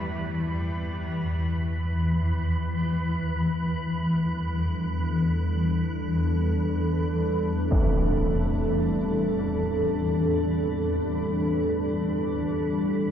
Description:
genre	dark ambient drone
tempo	free time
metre	none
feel	none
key	unclear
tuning	A4 = 440 Hz
part	bright cello	melody	0.0-0.5 s	G3	-42 LUFS	left 1 dB	shimmer reverb, ping-pong delay
part	deep dark ambient pad	sustained chords	0.0-13.1 s	E2 to E5	-28 LUFS	equal	chorus, built-in reverb, shimmer reverb
part	carillon bells	arpeggios	0.0-13.1 s	G3 to A3	-38 LUFS	equal	shimmer reverb, ping-pong delay
part	swarming drone	drone	0.0-13.1 s	E2 to E3	-26 LUFS	left 1 dB	built-in reverb
part	impact	percussion	7.7-7.9 s	none	-28 LUFS	equal	low-pass filter on sfx
room	wet cathedral reverb, RT60 6.2 s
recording	worn, warbling old tape, cassette tape, warbly pitch drift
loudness	-24 LUFS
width	side -9 dB against mid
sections	0.0-13.1 A section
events	none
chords	0.0 Em; 1.1 G/E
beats	free time

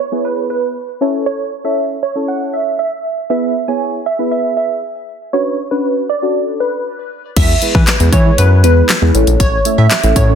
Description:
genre	dance-pop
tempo	118 BPM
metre	4/4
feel	straight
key	E mixolydian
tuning	A4 = 440 Hz
part	glassy wavetable pluck	melody	0.0-10.4 s	B4 to G#5	-18 LUFS	right 3 dB	chorus, sidechain pumping, ping-pong delay
part	deep mellow chord stab	accompaniment	0.1-10.4 s	G#3 to E5	-18 LUFS	equal	chorus, phaser, sidechain pumping
part	round analog bass	bass	7.4-10.3 s	A1 to E3	-11 LUFS	left 1 dB	sidechain pumping
part	pop drum kit	drums	7.4-10.3 s	crash cymbal, handclaps, hi-hat, kick drum, snare drum	-13 LUFS	left 1 dB	none
room	little or no reverb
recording	dense, heavily limited modern master, low-pass filter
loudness	-12 LUFS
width	side -8 dB against mid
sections	0.0-7.4 A section; 7.4-10.4 B section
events	filter sweep 0.0-7.4; drop 7.4-10.4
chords	0.0 E; 1.0 A; 3.3 E; 5.3 Bmadd9; 7.4 E; 9.1 A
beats	0.25 0.76 | 1.26 1.77 2.28 2.79 | 3.30 3.81 4.32 4.82 | 5.33 5.84 6.35 6.86 | 7.37 7.87 8.38 8.89 | 9.40 9.91

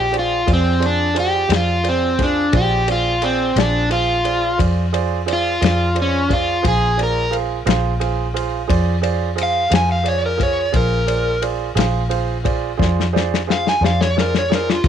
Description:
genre	slow blues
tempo	58 BPM (dotted quarters)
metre	12/8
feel	straight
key	Bb mixolydian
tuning	A4 = 439 Hz
part	overdriven slide guitar	melody	0.0-14.8 s	C4 to Ab5	-18 LUFS	left 1 dB	none
part	clear concert grand piano	accompaniment	0.0-14.9 s	F4 to F5	-23 LUFS	right 14 dB	none
part	vintage muted fingered electric bass	bass	0.0-14.9 s	Bb1 to F2	-21 LUFS	equal	none
part	warm soul drum kit	drums	0.1-14.9 s	kick drum, ride cymbal, snare drum	-23 LUFS	left 5 dB	none
room	light reverb, small room reverb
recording	1960s-style stereo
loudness	-15 LUFS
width	side -9 dB against mid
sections	0.0-14.9 A section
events	electric slide guitar solo 0.0-14.9; drum fill 12.8-14.8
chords	0.0 Bb9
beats	0.47 1.50 | 2.53 3.56 4.59 5.62 | 6.64 7.67 8.69 9.72 | 10.74 11.76 12.79 13.81 | 14.83

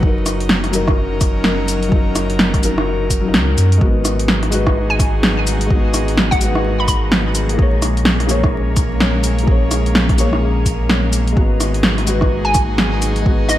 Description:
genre	future garage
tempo	127 BPM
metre	4/4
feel	swing 61% on 16ths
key	G# minor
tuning	A4 = 440 Hz
part	felt-muted upright piano	accompaniment	0.0-13.6 s	F#3 to C#5	-23 LUFS	left 3 dB	sidechain pumping, ping-pong delay
part	airy breathy pad	sustained chords	0.0-13.6 s	F#3 to A#4	-24 LUFS	equal	chorus, sidechain pumping
part	warm sub bass	bass	0.0-13.6 s	F#1 to F#2	-19 LUFS	equal	sidechain pumping
part	electronic kick drum	drums	0.0-13.4 s	none	-16 LUFS	equal	overdrive
part	deep house drum kit	drums	0.3-13.6 s	cabasa, hi-hat, rim click, snare drum	-18 LUFS	equal	overdrive, gated reverb
part	wind-like tuned noise texture	texture	4.9-13.6 s	A#3 to A#5	-30 LUFS	equal	built-in reverb
part	hollow square pluck	melody	4.9-7.0, 12.4-13.6 s	D#5 to B5	-21 LUFS	equal	analog chorus, cassette tape, digital delay
room	light reverb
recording	bright 1980s-style digital production, vinyl crackle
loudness	-13 LUFS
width	side -13 dB against mid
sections	0.0-13.6 A section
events	none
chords	0.0 F#6; 3.8 G#m7; 7.6 A#m7; 11.4 G#m7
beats	| 0.03 0.50 0.98 1.45 | 1.92 2.39 2.87 3.34 | 3.81 4.28 4.75 5.23 | 5.70 6.17 6.64 7.12 | 7.59 8.06 8.54 9.01 | 9.48 9.95 10.43 10.90 | 11.37 11.84 12.31 12.79 | 13.26

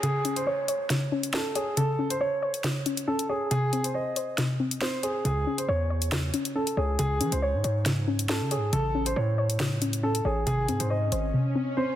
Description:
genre	hip hop, drill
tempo	138 BPM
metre	4/4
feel	half-time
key	unclear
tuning	A4 = 441 Hz
part	dark concert grand piano	melody	0.0-12.0 s	G#4 to D#5	-30 LUFS	right 2 dB	digital delay
part	soft round pluck	accompaniment	0.0-12.0 s	B#2 to C#5	-29 LUFS	left 2 dB	chorus
part	drill drum kit	drums	0.0-11.2 s	hi-hat, snare drum	-31 LUFS	equal	none
part	downlifter and swell	sound effects	0.0-1.8, 10.9-12.0 s	none	-39 LUFS	right 1 dB	none
part	hard-hitting 808-style bass	bass	5.2-11.3 s	G#1 to E3	-28 LUFS	equal	none
room	light reverb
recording	dense, heavily limited modern master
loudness	-25 LUFS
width	side -12 dB against mid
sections	0.0-12.0 A section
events	break 0.0-5.2; swell 10.9-12.0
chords	0.0 N.C.; 5.2 C#m; 8.7 A; 10.5 G#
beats	| 0.03 0.47 0.90 1.34 | 1.77 2.21 2.64 3.08 | 3.51 3.94 4.38 4.82 | 5.25 5.68 6.12 6.55 | 6.99 7.42 7.86 8.29 | 8.73 9.16 9.60 10.03 | 10.47 10.90 11.34 11.77

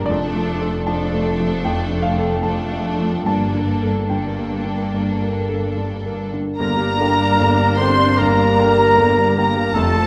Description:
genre	cinematic, emotional film score for orchestra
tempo	74 BPM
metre	4/4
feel	uneven beats, rubato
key	G minor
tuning	A4 = 440 Hz
part	rich studio violin section	melody	0.0-10.1 s	A4 to C6	-30 LUFS	equal	none
part	clear studio violin section	second line	0.0-10.1 s	D4 to C6	-30 LUFS	equal	none
part	warm concert grand piano	accompaniment	0.0-10.1 s	F1 to Eb6	-24 LUFS	equal	none
part	warm studio viola section	accompaniment	0.0-10.1 s	C3 to F4	-28 LUFS	equal	none
part	clear studio double bass section	bass	0.0-10.1 s	F1 to G1	-28 LUFS	equal	none
part	warm studio cello section	bass	0.0-10.1 s	F2 to G2	-28 LUFS	equal	none
part	bright clarinet	second line	6.6-10.1 s	A4 to C5	-24 LUFS	equal	none
part	mellow hollow small flute group	second line	6.6-10.1 s	A5 to C6	-24 LUFS	equal	none
part	warm oboe	second line	6.6-10.1 s	A4 to C5	-28 LUFS	equal	none
part	mellow French horn section	sustained chords	6.6-10.1 s	A3 to C4	-24 LUFS	equal	none
room	wet scoring stage reverb, RT60 1.5 s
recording	none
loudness	-18 LUFS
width	mono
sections	0.0-6.6 A section; 6.6-10.1 B section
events	none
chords	0.1 Dm/F; 3.3 Gmadd9; 6.6 Gm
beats	| 0.09 0.89 1.66 2.45 | 3.27 4.11 4.94 5.77 | 6.59 7.39 8.18 8.97 | 9.76

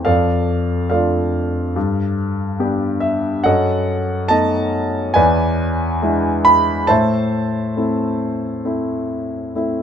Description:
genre	classical, lyrical solo piano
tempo	70 BPM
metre	4/4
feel	rubato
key	A minor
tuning	A4 = 440 Hz
part	warm grand piano	solo	0.0-9.8 s	E2 to B5	-16 LUFS	equal	none
room	light reverb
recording	close, detailed microphones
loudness	-16 LUFS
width	side -8 dB against mid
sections	0.0-9.8 A section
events	none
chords	0.1 Dm/F; 1.8 G; 3.4 B7/F#; 5.2 E7; 6.9 Am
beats	| 0.06 0.91 1.76 2.60 | 3.45 4.30 5.15 6.02 | 6.90 7.77 8.65 9.56

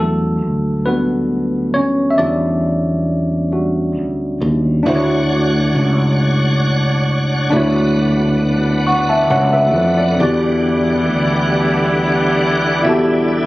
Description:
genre	R&B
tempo	45 BPM (dotted quarters)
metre	6/8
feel	straight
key	D major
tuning	A4 = 440 Hz
part	tine electric piano	accompaniment	0.0-13.5 s	E3 to C#6	-17 LUFS	equal	none
part	sustaining fretless electric bass	bass	0.0-13.5 s	C#2 to F2	-18 LUFS	equal	none
part	bright tonewheel organ	sustained chords	4.9-13.5 s	D3 to F#5	-20 LUFS	equal	chorus vibrato, slow rotary speaker
part	warm horn section	stabs	10.2-13.5 s	G3 to E4	-20 LUFS	right 1 dB	none
room	light reverb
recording	recorded on a phone in the room, studio reverb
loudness	-13 LUFS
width	side -18 dB against mid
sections	0.0-4.8 A section; 4.8-13.5 B section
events	tine electric piano solo 0.0-4.8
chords	0.0 Em9; 4.8 Dmaj7; 10.2 Em9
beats	0.85 | 2.18 3.51 | 4.85 6.18 | 7.51 8.85 | 10.18 11.51 | 12.85

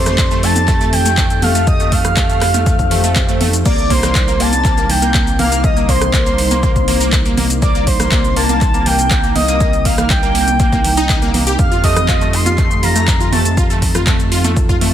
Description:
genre	progressive house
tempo	121 BPM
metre	4/4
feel	straight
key	C dorian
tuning	A4 = 441 Hz
part	expressive synth lead	melody	0.0-13.6 s	C5 to C6	-19 LUFS	left 1 dB	wide subtle chorus, sidechain pumping, dub echo
part	soft supersaw	second line	0.0-13.6 s	C6 to C7	-26 LUFS	right 1 dB	cassette tape, sidechain pumping, dub echo
part	airy breathy pad	sustained chords	0.0-14.9 s	C3 to A4	-23 LUFS	right 1 dB	chorus, sidechain pumping
part	wide unison pluck	arpeggios	0.0-14.9 s	A3 to G4	-21 LUFS	equal	phaser, sidechain pumping, dub echo
part	saturated sub bass	bass	0.0-14.9 s	C2 to F2	-19 LUFS	equal	sidechain pumping
part	deep house drum kit	drums	0.1-14.9 s	crash cymbal, handclaps, hi-hat, shaker	-20 LUFS	equal	overdrive, studio ambience
part	electronic rim click and congas	percussion	0.1-14.9 s	none	-22 LUFS	right 3 dB	overdrive, sidechain pumping on snare, studio ambience, sidechain pumping on perc
part	electronic kick drum	drums	0.2-14.8 s	none	-16 LUFS	equal	overdrive, studio ambience
part	swell	sound effects	2.8-3.7 s	none	-27 LUFS	right 3 dB	none
room	light reverb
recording	none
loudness	-11 LUFS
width	side -10 dB against mid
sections	0.0-14.9 A section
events	swell 2.8-3.7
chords	0.0 F7; 3.7 Cm7; 11.6 F7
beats	0.18 0.68 1.18 | 1.67 2.17 2.66 3.16 | 3.66 4.15 4.65 5.14 | 5.64 6.13 6.63 7.13 | 7.62 8.12 8.61 9.11 | 9.61 10.10 10.60 11.09 | 11.59 12.09 12.58 13.08 | 13.57 14.07 14.56

